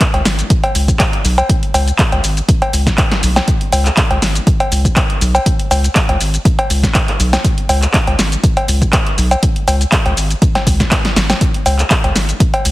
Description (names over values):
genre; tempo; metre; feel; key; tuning
acid house; 121 BPM; 4/4; swing 54% on 16ths; unclear; A4 = 441 Hz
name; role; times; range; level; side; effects
electronic kick drum; drums; 0.0-12.5 s; none; -15 LUFS; equal; none
punchy analog drum machine; drums; 0.0-12.7 s; cowbell, handclaps, hi-hat, shaker, snare drum; -15 LUFS; equal; none
round analog bass; bass; 0.1-12.7 s; G#1 to C#2; -15 LUFS; equal; sidechain pumping
room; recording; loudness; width
light reverb; heavily compressed radio sound, multiband compression; -11 LUFS; side -17 dB against mid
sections
0.0-12.7 A section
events
drum fill 10.9-11.4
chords
none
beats
0.01 0.50 1.00 | 1.49 1.99 2.49 2.98 | 3.48 3.97 4.47 4.96 | 5.46 5.96 6.45 6.95 | 7.44 7.94 8.44 8.93 | 9.43 9.92 10.42 10.91 | 11.41 11.91 12.40